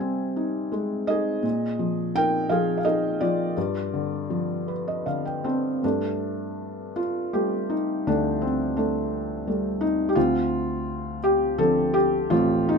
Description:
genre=classical, lyrical solo piano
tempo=78-88 BPM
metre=3/4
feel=rubato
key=unclear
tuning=A4 = 440 Hz
part: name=felt-muted upright piano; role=solo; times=0.0-12.8 s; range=A1 to Ab5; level=-22 LUFS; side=equal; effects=none
room=light reverb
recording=minimal, uncompressed stereo recording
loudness=-22 LUFS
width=side -5 dB against mid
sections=0.0-5.8 A section; 5.8-12.8 B section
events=felt piano fill 4.3-5.8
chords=0.0 Abmaj7/C; 1.4 Bb7sus4; 3.6 G7; 5.8 Gsus2; 10.2 Dm7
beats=0.02 0.72 | 1.44 2.15 2.85 | 3.56 4.30 5.06 | 5.83 6.58 7.33 | 8.06 8.77 9.46 | 10.16 10.87 11.58 | 12.31

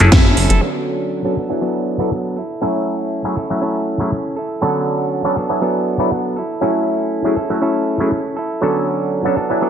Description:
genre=filtered disco house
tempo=120 BPM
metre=4/4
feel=straight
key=F# minor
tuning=A4 = 439 Hz
part: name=auto-wah clav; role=accompaniment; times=0.0-9.7 s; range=D3 to G#5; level=-19 LUFS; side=equal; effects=phaser, sidechain pumping, low-pass filter
part: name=direct-recorded clean electric guitar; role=riff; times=0.0-9.7 s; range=F#3 to A4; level=-20 LUFS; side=right 2 dB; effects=sidechain pumping, low-pass filter
part: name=plucky analog bass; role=bass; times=0.0-0.6 s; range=F#1 to F#2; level=-13 LUFS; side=equal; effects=sidechain pumping, low-pass filter
part: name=house drum kit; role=drums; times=0.0-0.6 s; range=hi-hat, snare drum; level=-18 LUFS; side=equal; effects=sidechain pumping on hats, low-pass filter on hats, small room reverb, low-pass filter on snare
room=moderate echo chamber reverb, RT60 2.4 s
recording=none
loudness=-16 LUFS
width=side -8 dB against mid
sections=0.6-9.7 A section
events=band accent 0.1; filter sweep 0.6-9.7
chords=0.0 F#m7; 0.6 Bm9; 1.4 E9sus4; 2.4 F#m7; 4.6 Bm9; 5.4 E9sus4; 6.4 F#m7; 8.6 Bm9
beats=0.12 | 0.62 1.12 1.62 2.12 | 2.62 3.12 3.62 4.12 | 4.62 5.12 5.62 6.12 | 6.62 7.12 7.62 8.12 | 8.62 9.12 9.62

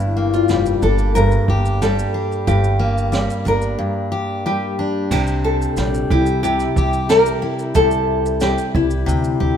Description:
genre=acoustic pop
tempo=91 BPM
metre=4/4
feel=straight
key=C mixolydian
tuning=A4 = 440 Hz
part: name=nylon-string guitar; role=melody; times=0.0-9.6 s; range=E4 to Bb4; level=-19 LUFS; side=left 2 dB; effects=none
part: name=picked steel-string acoustic guitar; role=accompaniment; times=0.0-9.6 s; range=G2 to G4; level=-20 LUFS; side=equal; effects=none
part: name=upright bass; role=bass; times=0.0-9.6 s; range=F1 to D2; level=-22 LUFS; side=right 1 dB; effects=none
part: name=jazz brush drum kit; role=drums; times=0.0-9.6 s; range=crash cymbal, kick drum, shaker, snare drum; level=-25 LUFS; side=right 3 dB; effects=none
room=light reverb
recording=minimal, uncompressed stereo recording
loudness=-15 LUFS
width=side -8 dB against mid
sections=0.0-5.1 A section; 5.1-9.6 B section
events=break 3.8-5.1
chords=0.0 Gm; 5.1 Cadd9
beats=0.49 1.15 1.81 | 2.47 3.13 3.79 4.45 | 5.11 5.78 6.43 7.10 | 7.76 8.42 9.08

